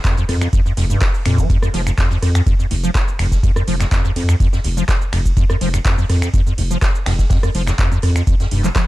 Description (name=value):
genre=acid house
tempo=124 BPM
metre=4/4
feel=straight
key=unclear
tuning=A4 = 440 Hz
part: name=acid bass, square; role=riff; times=0.0-8.8 s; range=Eb2 to F3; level=-20 LUFS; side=equal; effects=overdrive, ensemble chorus, tape echo
part: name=booming analog drum machine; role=drums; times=0.0-8.9 s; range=finger snaps, handclaps, hi-hat, ride cymbal, rim click, shaker, toms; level=-25 LUFS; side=equal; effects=overdrive
part: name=electronic kick drum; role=drums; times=0.0-8.9 s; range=none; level=-17 LUFS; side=equal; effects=overdrive
part: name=vintage drum kit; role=drums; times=0.0-8.9 s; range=hi-hat, snare drum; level=-35 LUFS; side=right 2 dB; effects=none
part: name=saturated sub bass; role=bass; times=0.3-8.7 s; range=F1 to F2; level=-18 LUFS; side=equal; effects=sidechain pumping
room=little or no reverb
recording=dark, warm production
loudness=-14 LUFS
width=side -17 dB against mid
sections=0.0-8.9 A section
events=none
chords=0.0 F5